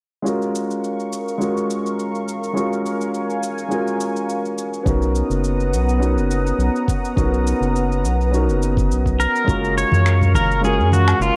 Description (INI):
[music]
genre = sunset chillout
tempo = 104 BPM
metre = 4/4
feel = swing 54% on 16ths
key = F# major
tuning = A4 = 440 Hz
[part]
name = warm concert grand piano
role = accompaniment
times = 0.2-11.4 s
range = G#3 to A#4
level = -25 LUFS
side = equal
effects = low-pass filter, digital delay
[part]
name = lush unison pad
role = sustained chords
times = 0.9-11.4 s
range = B3 to D#6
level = -28 LUFS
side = equal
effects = chorus, phaser
[part]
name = electronic shaker, finger snaps and woodblock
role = drums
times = 0.3-11.3 s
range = none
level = -34 LUFS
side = equal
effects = none
[part]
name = round analog bass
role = bass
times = 4.9-11.3 s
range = F#1 to F#2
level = -21 LUFS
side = equal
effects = transformer saturation
[part]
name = electronic kick drum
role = drums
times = 4.9-9.6 s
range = none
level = -24 LUFS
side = equal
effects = none
[part]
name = pedal steel guitar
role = melody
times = 9.2-11.4 s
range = E#4 to C#5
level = -22 LUFS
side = equal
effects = none
[part]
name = congas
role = percussion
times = 9.9-11.0 s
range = none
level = -28 LUFS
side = equal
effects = none
[sound]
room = moderate concert hall reverb, RT60 2.4 s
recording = worn, warbling old tape, cassette tape, warbly pitch drift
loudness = -20 LUFS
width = mono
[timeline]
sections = 0.2-9.5 A section; 9.5-11.4 B section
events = filter sweep on grand piano 9.5-11.4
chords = 0.2 F#maj7; 4.9 Bmaj7; 9.5 F#maj7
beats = | 0.25 0.83 1.40 1.98 | 2.56 3.13 3.71 4.29 | 4.87 5.44 6.02 6.59 | 7.17 7.75 8.33 8.90 | 9.48 10.06 10.63 11.21